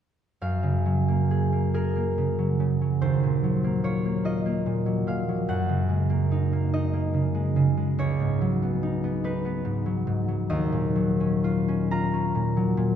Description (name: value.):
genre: classical, solo harp piece.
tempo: 41-49 BPM (dotted quarters).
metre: 6/8.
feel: rubato.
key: Gb major.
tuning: A4 = 440 Hz.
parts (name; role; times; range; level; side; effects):
concert harp; solo; 0.4-13.0 s; Db2 to Bb5; -22 LUFS; equal; none.
room: wet scoring stage reverb, RT60 1.6 s.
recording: minimal, uncompressed stereo recording.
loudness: -23 LUFS.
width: side -9 dB against mid.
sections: 0.4-13.0 A section.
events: none.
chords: 0.4 Gbmaj9; 3.0 Ebm9; 5.5 Gb69; 8.0 Db11; 10.5 Ebm9.